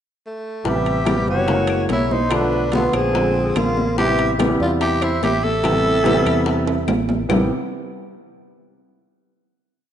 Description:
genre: Afro-Cuban jazz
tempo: 144 BPM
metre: 4/4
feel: straight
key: A minor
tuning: A4 = 440 Hz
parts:
  - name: growling tenor saxophone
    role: melody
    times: 0.3-6.9 s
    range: A3 to A4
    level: -22 LUFS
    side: equal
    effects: none
  - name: warm grand piano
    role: accompaniment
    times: 0.6-7.5 s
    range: C3 to C4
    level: -21 LUFS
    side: right 1 dB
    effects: none
  - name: silver concert flute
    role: second line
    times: 0.7-6.9 s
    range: F4 to E5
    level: -25 LUFS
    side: left 1 dB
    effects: none
  - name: fingered electric bass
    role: bass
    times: 0.7-7.5 s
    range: F#1 to E2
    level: -25 LUFS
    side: equal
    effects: none
  - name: bongos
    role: percussion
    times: 0.7-7.4 s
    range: none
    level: -31 LUFS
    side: left 7 dB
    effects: none
  - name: congas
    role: percussion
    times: 0.7-7.4 s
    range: none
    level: -26 LUFS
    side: equal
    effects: none
  - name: timbales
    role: percussion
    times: 0.9-7.4 s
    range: none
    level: -30 LUFS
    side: right 6 dB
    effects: none
  - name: claves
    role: percussion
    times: 1.1-7.4 s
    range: none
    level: -37 LUFS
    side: left 6 dB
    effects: none
room: moderate lush hall reverb, RT60 2.3 s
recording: rough home demo mix, nothing above 10.6 kHz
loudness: -16 LUFS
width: side -9 dB against mid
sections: 0.0-0.7 pickup bar; 0.7-7.3 A section; 7.3-9.0 final chord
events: drum fill 6.7-7.3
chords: 0.0 N.C.; 0.7 Am9; 1.5 F#7; 2.3 Bm7b5; 3.1 Bb9; 4.0 Am9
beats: 0.24 | 0.66 1.07 1.49 1.90 | 2.32 2.73 3.15 3.56 | 3.98 4.39 4.81 5.22 | 5.64 6.06 6.47 6.89 | 7.30

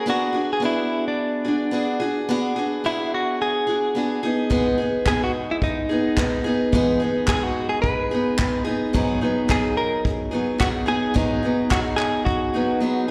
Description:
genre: acoustic pop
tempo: 108 BPM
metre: 4/4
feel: swing 55% on 16ths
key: unclear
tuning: A4 = 441 Hz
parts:
  - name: direct-recorded clean electric guitar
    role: melody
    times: 0.0-13.0 s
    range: D4 to B4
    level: -26 LUFS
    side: equal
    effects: slapback echo
  - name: picked acoustic archtop guitar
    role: accompaniment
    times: 0.0-13.1 s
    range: G#2 to G#4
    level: -25 LUFS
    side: equal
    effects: slapback echo
  - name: soft brush drum kit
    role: drums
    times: 4.5-12.4 s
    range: handclaps, kick drum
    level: -27 LUFS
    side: equal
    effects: none
room: light reverb, small room ambience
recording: live gig heard through the venue's PA, recital hall reverb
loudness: -22 LUFS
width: mono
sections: 0.0-13.1 A section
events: none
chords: 0.1 Bm6; 4.2 Emaj7 (rootless); 8.9 G#m7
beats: | 0.07 0.63 1.19 1.74 | 2.29 2.85 3.40 3.96 | 4.51 5.07 5.62 6.17 | 6.73 7.28 7.84 8.39 | 8.95 9.50 10.05 10.61 | 11.16 11.71 12.27 12.82

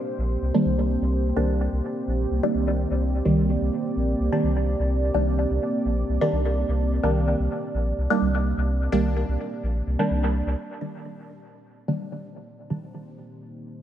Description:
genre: dub techno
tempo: 127 BPM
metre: 4/4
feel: straight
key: C minor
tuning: A4 = 440 Hz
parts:
  - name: dark analog pad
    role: sustained chords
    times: 0.0-13.8 s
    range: Bb3 to D5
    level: -28 LUFS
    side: right 2 dB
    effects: chorus
  - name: soft dub sub bass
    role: bass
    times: 0.2-10.6 s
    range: Bb1 to C2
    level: -24 LUFS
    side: equal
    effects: none
  - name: filtered dub chord stab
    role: stabs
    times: 0.5-13.0 s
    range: Eb3 to D4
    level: -26 LUFS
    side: right 1 dB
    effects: phaser, dub echo
room: light reverb, digital ambience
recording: none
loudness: -22 LUFS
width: side -11 dB against mid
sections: 0.0-10.6 A section; 10.6-13.8 B section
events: filter sweep on synth stab 10.6-13.8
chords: 0.0 Cm7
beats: 0.18 0.66 | 1.13 1.60 2.07 2.55 | 3.02 3.49 3.96 4.44 | 4.91 5.38 5.85 6.33 | 6.80 7.27 7.74 8.22 | 8.69 9.16 9.63 10.11 | 10.58 11.05 11.52 11.99 | 12.47 12.94 13.41

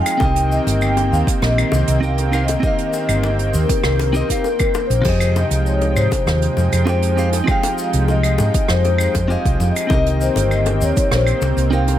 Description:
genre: sunset chillout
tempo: 99 BPM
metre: 4/4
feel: straight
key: F minor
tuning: A4 = 443 Hz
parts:
  - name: vibraphone with soft mallets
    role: melody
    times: 0.0-12.0 s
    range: Bb4 to Ab5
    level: -21 LUFS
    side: left 3 dB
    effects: tape echo
  - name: direct-recorded clean electric guitar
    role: accompaniment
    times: 0.0-12.0 s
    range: C3 to G5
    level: -24 LUFS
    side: moving between left 4 dB and right 5 dB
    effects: auto-pan
  - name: lush unison pad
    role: sustained chords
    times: 0.0-12.0 s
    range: Eb3 to G5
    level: -24 LUFS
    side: right 1 dB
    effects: chorus
  - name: jazz brush drum kit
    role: drums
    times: 0.1-12.0 s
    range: claves, crash cymbal, hi-hat, rim click, shaker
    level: -26 LUFS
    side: right 2 dB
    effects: none
  - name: hollow-body short-scale fingered electric bass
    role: bass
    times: 0.2-12.0 s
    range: G1 to Ab2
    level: -18 LUFS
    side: equal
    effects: none
  - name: electronic kick drum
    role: drums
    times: 0.2-11.1 s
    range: none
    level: -20 LUFS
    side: right 1 dB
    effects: overdrive
  - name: bongos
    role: percussion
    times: 0.2-12.0 s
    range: none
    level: -29 LUFS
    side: left 5 dB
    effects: none
room: light reverb, small room ambience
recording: none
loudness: -15 LUFS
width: side -11 dB against mid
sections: 0.0-12.0 A section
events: none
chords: 0.2 Cm7; 5.1 Fm9; 9.9 Cm7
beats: | 0.21 0.81 1.42 2.03 | 2.63 3.24 3.84 4.45 | 5.06 5.66 6.27 6.88 | 7.48 8.09 8.69 9.30 | 9.90 10.51 11.12 11.72

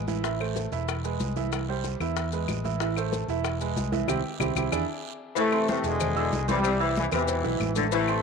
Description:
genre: latin, salsa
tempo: 187 BPM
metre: 4/4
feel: straight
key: unclear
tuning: A4 = 440 Hz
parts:
  - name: clear grand piano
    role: accompaniment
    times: 0.0-8.2 s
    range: E3 to E6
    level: -30 LUFS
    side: right 10 dB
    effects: none
  - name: fingered electric bass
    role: bass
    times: 0.0-8.2 s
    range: E1 to E2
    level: -31 LUFS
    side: left 2 dB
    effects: none
  - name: bongos and cowbell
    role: percussion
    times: 0.1-8.1 s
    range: none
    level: -37 LUFS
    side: left 13 dB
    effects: none
  - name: congas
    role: percussion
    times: 0.1-8.2 s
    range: none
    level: -35 LUFS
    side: left 2 dB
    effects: none
  - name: guiro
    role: percussion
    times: 0.1-8.2 s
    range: none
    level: -44 LUFS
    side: right 13 dB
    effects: none
  - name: maracas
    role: percussion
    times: 0.1-8.2 s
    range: none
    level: -40 LUFS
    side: left 18 dB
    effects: none
  - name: claves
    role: percussion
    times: 0.4-8.2 s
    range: none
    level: -37 LUFS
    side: left 16 dB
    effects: none
  - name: bright trombone section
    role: melody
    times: 5.4-8.2 s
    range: G#2 to A3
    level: -27 LUFS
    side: left 2 dB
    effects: none
  - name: clear saxophone section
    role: second line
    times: 5.4-8.1 s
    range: C3 to E3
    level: -30 LUFS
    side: left 12 dB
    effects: none
room: wet spring reverb, RT60 2.1 s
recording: 1960s-style stereo with parts hard left and right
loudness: -25 LUFS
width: side -5 dB against mid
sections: 0.0-5.4 A section; 5.4-8.2 B section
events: band accent 4.1-5.4; drum fill 4.4-5.4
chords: 0.2 Am; 0.9 E; 1.5 C; 2.2 E; 2.8 Am; 3.4 E; 4.1 C; 4.7 E7; 6.6 C; 7.3 E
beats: | 0.24 0.56 0.88 1.20 | 1.52 1.84 2.16 2.48 | 2.80 3.12 3.44 3.77 | 4.08 4.41 4.72 5.04 | 5.36 5.68 6.00 6.32 | 6.64 6.96 7.28 7.60 | 7.92

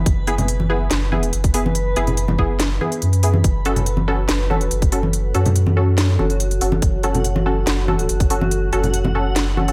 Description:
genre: deep dubstep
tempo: 142 BPM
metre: 4/4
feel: half-time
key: F# minor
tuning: A4 = 440 Hz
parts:
  - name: soft dub sub bass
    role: bass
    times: 0.0-9.7 s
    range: F#1 to F#2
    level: -22 LUFS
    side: equal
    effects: none
  - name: backwards swelling texture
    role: texture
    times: 0.0-9.7 s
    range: F#4 to B4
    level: -33 LUFS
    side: equal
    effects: built-in reverb
  - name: electronic kick drum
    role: drums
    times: 0.1-8.3 s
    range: none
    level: -20 LUFS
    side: equal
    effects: none
  - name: garage drum kit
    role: drums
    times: 0.1-9.7 s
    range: hi-hat, snare drum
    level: -26 LUFS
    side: equal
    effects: none
  - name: filtered dub chord stab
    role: stabs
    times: 0.3-9.7 s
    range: B3 to A4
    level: -26 LUFS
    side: equal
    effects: chorus, dub echo
  - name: congas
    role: percussion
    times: 0.4-9.7 s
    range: none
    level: -27 LUFS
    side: equal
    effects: dub echo
  - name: dark analog pad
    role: sustained chords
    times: 4.5-9.7 s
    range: F#4 to C#5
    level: -31 LUFS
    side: equal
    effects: chorus
room: light reverb, digital ambience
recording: none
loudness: -19 LUFS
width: mono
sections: 0.0-9.7 A section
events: none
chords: 0.0 E/F#; 3.4 F#m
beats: | 0.06 0.48 0.91 1.33 | 1.75 2.17 2.60 3.02 | 3.44 3.87 4.29 4.71 | 5.13 5.55 5.98 6.40 | 6.82 7.25 7.67 8.09 | 8.51 8.94 9.36

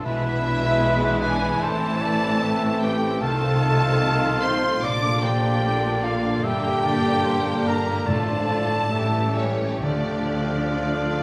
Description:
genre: classical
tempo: 65-77 BPM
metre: 4/4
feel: rubato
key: D minor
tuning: A4 = 440 Hz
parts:
  - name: rich studio violin section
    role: melody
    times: 0.0-11.2 s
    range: C#5 to D6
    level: -32 LUFS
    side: equal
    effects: none
  - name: mellow hollow silver concert flute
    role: second line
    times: 0.0-11.2 s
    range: C#5 to D6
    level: -32 LUFS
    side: equal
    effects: none
  - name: warm clarinet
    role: second line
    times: 0.0-11.2 s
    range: C#4 to D5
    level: -33 LUFS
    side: equal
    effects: none
  - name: warm oboe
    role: second line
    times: 0.0-11.2 s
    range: Bb4 to F5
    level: -31 LUFS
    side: equal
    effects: none
  - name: mellow French horn section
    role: sustained chords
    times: 0.0-11.2 s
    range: E3 to Eb4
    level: -34 LUFS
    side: equal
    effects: none
  - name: concert harp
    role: arpeggios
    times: 0.0-11.2 s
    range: G2 to G4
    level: -33 LUFS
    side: equal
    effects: none
  - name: clear symphonic double bass section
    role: bass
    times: 0.0-11.2 s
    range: G1 to D2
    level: -32 LUFS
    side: equal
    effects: none
  - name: warm studio cello section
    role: bass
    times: 0.0-11.2 s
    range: G2 to D3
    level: -31 LUFS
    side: equal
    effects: none
  - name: rich studio violin section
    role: second line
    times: 0.1-11.2 s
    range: G3 to G4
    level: -35 LUFS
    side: equal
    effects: none
  - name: rich studio viola section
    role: accompaniment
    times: 0.1-11.2 s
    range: D3 to Bb3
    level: -32 LUFS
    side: equal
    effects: none
  - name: timpani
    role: percussion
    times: 8.1-11.2 s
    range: A2 to D3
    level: -34 LUFS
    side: equal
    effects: none
room: wet recital hall reverb, RT60 1.6 s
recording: none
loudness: -22 LUFS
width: mono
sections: 0.0-11.2 A section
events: none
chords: 0.0 E7/B; 1.6 Am; 3.2 F7/C; 4.8 Bb; 6.4 Gm; 8.1 Dm/A; 8.9 A7; 9.8 Dm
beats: | 0.05 0.83 1.62 2.42 | 3.22 4.02 4.83 5.63 | 6.44 7.25 8.08 8.93 | 9.84 10.75

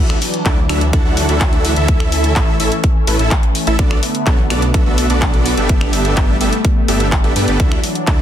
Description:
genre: EDM, festival progressive house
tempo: 126 BPM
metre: 4/4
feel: straight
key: D major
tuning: A4 = 439 Hz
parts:
  - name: lush unison pad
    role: sustained chords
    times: 0.0-8.2 s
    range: D3 to D4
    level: -22 LUFS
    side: left 1 dB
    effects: chorus, phaser, sidechain pumping
  - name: dense compressed supersaw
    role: riff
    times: 0.0-8.2 s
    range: B3 to F#5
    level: -19 LUFS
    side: right 1 dB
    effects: cassette tape, sidechain pumping, tape echo
  - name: detuned saw bass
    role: bass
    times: 0.0-8.2 s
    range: G1 to G2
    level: -19 LUFS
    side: equal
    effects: tube saturation, sidechain pumping
  - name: house drum kit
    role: drums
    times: 0.1-8.2 s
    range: finger snaps, handclaps, hi-hat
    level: -22 LUFS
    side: left 1 dB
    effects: none
  - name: electronic kick drum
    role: drums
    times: 0.5-8.2 s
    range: none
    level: -14 LUFS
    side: equal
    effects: overdrive
room: digital ambience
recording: dense, heavily limited modern master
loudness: -12 LUFS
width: side -10 dB against mid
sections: 0.0-8.2 A section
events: none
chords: 0.0 Dadd9; 1.9 A; 3.8 Bm7; 5.7 Gadd9; 7.6 Dadd9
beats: 0.46 0.93 1.41 | 1.89 2.36 2.84 3.31 | 3.79 4.26 4.74 5.22 | 5.69 6.17 6.65 7.12 | 7.60 8.07

